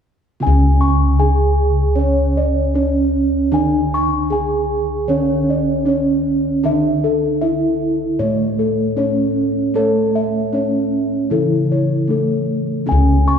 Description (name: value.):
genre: Javanese gamelan.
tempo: 77 BPM.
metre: 4/4.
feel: straight.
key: C# pelog.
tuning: A4 = 440 Hz.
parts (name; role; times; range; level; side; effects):
gamelan-type bronze metallophone; melody; 0.4-13.4 s; A3 to C#5; -19 LUFS; right 2 dB; none.
gamelan-type bronze metallophone; accompaniment; 0.4-13.4 s; C#3 to C#4; -23 LUFS; right 1 dB; none.
gamelan-type bossed gongs; arpeggios; 0.4-13.4 s; A4 to C#6; -22 LUFS; left 4 dB; none.
gamelan-type bossed gongs; bass; 0.4-13.4 s; C#2 to A4; -19 LUFS; left 1 dB; none.
room: wet church reverb, RT60 3.2 s.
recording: recorded in a church or concert hall.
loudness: -14 LUFS.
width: side -7 dB against mid.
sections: 0.4-13.4 A section.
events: none.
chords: none.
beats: | 0.41 1.19 1.96 2.74 | 3.52 4.30 5.08 5.86 | 6.64 7.42 8.20 8.98 | 9.76 10.54 11.31 12.09 | 12.87.